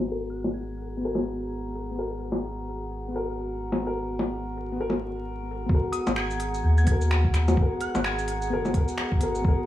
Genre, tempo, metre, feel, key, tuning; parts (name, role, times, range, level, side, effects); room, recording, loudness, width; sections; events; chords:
future garage; 128 BPM; 4/4; swing 60% on 16ths; G# minor; A4 = 441 Hz
dark upright piano; accompaniment; 0.0-9.7 s; B3 to A#4; -31 LUFS; left 2 dB; sidechain pumping, low-pass filter, analog delay
dark analog pad; sustained chords; 0.0-9.7 s; G#4 to F#5; -36 LUFS; right 3 dB; chorus, sidechain pumping
warm sub bass; bass; 0.0-9.6 s; F#1 to D#2; -29 LUFS; equal; sidechain pumping
glassy synth bell; melody; 0.3-1.2, 5.9-8.7 s; D#6 to G#6; -36 LUFS; equal; chorus, tremolo, tape echo
organic electronic drum kit; drums; 0.4-9.4 s; bongos, finger snaps, hi-hat, shaker; -28 LUFS; left 2 dB; low-pass filter on perc, low-pass filter on snare, low-pass filter on hats, low-pass filter on room
electronic kick drum; drums; 5.7-9.6 s; -23 LUFS; equal
light reverb, digital ambience; vinyl crackle, low-pass filter, small room reverb; -24 LUFS; side -13 dB against mid
0.0-5.7 A section; 5.7-9.7 B section
filter sweep on analog synth pad 0.0-5.7; filter sweep on upright piano 0.0-5.7; filter sweep 0.0-5.7
0.0 G#m7